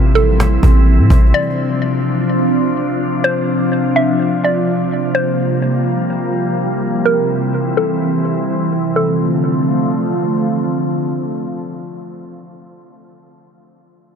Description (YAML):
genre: hip hop, atmospheric cloud-rap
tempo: 126 BPM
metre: 4/4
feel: half-time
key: D minor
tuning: A4 = 440 Hz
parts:
  - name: mallet-like synth pluck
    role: melody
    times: 0.0-10.3 s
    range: A4 to E5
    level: -20 LUFS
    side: right 1 dB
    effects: chorus, phaser, low-pass filter, digital delay
  - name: glassy FM pad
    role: sustained chords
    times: 0.0-12.0 s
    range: C3 to F4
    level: -16 LUFS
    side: equal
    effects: ensemble chorus, built-in reverb, low-pass filter
  - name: warm 808-style bass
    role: bass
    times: 0.0-1.3 s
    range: A1 to A2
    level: -10 LUFS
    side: equal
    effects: none
  - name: cajon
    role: drums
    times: 0.2-1.5 s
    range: none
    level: -19 LUFS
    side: equal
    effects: none
room: light reverb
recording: none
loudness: -13 LUFS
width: side -7 dB against mid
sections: 0.0-9.0 A section; 9.0-12.8 B section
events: filter sweep 0.0-9.0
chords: 0.0 Am7; 1.3 Dm7; 5.2 C7sus4; 7.1 Am7; 9.0 Dm7